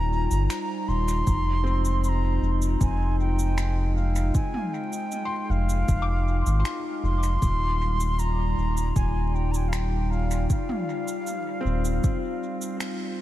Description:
ambient dub; 78 BPM; 4/4; straight; F minor; A4 = 440 Hz
wooden flute; melody; 0.0-12.8 s; F5 to C6; -32 LUFS; right 1 dB; dub echo
warbly tape-like pad; sustained chords; 0.0-13.2 s; G3 to C5; -31 LUFS; left 1 dB; chorus, built-in reverb
round analog bass; bass; 0.0-12.0 s; Eb1 to Ab1; -24 LUFS; equal
organic electronic drum kit; drums; 0.3-13.0 s; cabasa, finger snaps, toms; -37 LUFS; right 1 dB; overdrive, small room ambience, dub echo
electronic kick drum; drums; 1.3-12.2 s; -24 LUFS; equal; small room ambience
felt-muted upright piano; arpeggios; 1.6-13.2 s; C4 to D6; -36 LUFS; left 1 dB; dub echo
digital ambience; vinyl crackle; -23 LUFS; side -14 dB against mid
0.0-13.2 A section
band accent 12.8-13.2
0.0 Eb69; 1.3 Fm7; 7.4 Eb69

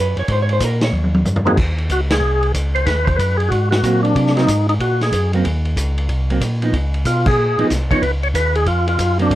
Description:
soul jazz organ trio; 186 BPM; 4/4; swing 64% on 8ths; Ab mixolydian; A4 = 440 Hz
vintage hollow-body jazz guitar; accompaniment; 0.0-1.2, 3.8-9.4 s; F3 to Db5; -20 LUFS; right 3 dB
tonewheel organ; bass; 0.0-9.4 s; C2 to C3; -18 LUFS; equal; slow rotary speaker
vintage drum kit; drums; 0.2-9.4 s; crash cymbal, hi-hat, kick drum, ride cymbal, snare drum, toms; -22 LUFS; equal
percussive tonewheel organ; melody; 1.5-9.4 s; Bb3 to Db5; -18 LUFS; equal; slow rotary speaker
little or no reverb; dry, close 1970s-style studio recording; -15 LUFS; side -14 dB against mid
0.0-1.6 A section; 1.6-9.4 B section
hollow-body jazz guitar solo 0.0-1.6; drum fill 0.9-1.6; band accent 2.1, 7.2
0.3 Absus2; 0.9 Eb7; 1.6 Ab9; 6.7 Db9

